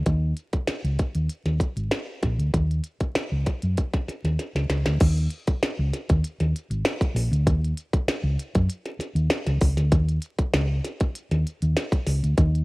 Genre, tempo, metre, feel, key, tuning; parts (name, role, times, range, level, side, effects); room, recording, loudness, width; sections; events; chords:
funk; 98 BPM; 4/4; straight; A4 = 439 Hz
hollow-body short-scale fingered electric bass; bass; 0.0-12.6 s; Ab1 to Gb2; -22 LUFS; equal
glitchy drum kit; drums; 0.1-12.6 s; crash cymbal, hi-hat, kick drum, snare drum; -24 LUFS; equal
little or no reverb; rough home demo mix, vinyl crackle; -22 LUFS; side -23 dB against mid
0.0-5.0 A section; 5.0-12.6 B section
drum fill 4.4-5.0